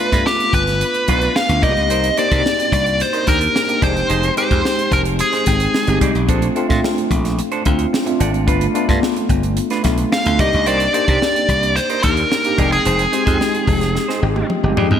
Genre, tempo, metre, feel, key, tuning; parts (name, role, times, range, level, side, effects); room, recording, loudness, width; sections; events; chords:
polished 1980s jazz-funk pop; 110 BPM; 4/4; straight; A4 = 440 Hz
nasal lead guitar with a parked wah; melody; 0.0-6.0, 10.1-14.5 s; G4 to F5; -18 LUFS; equal; overdrive
mellow tine electric piano; accompaniment; 0.0-15.0 s; Ab3 to G5; -21 LUFS; left 2 dB; medium stereo tremolo, lush chorus
semi-hollow electric guitar; riff; 0.0-14.9 s; D4 to D5; -26 LUFS; right 5 dB; wide subtle chorus
slap bass; bass; 0.1-15.0 s; F1 to C3; -20 LUFS; equal
crisp fusion drum kit; drums; 0.1-15.0 s; hi-hat, kick drum, snare drum, toms; -21 LUFS; equal; gated reverb
moderate lush hall reverb, RT60 2.2 s; bright 1980s-style digital production; -14 LUFS; side -9 dB against mid
0.0-15.0 A section
drum fill 14.0-15.0
0.0 G7; 1.6 Cm7; 3.8 Fm7; 6.3 Bbmaj9; 8.5 G7; 10.4 Cm7; 12.6 Fm7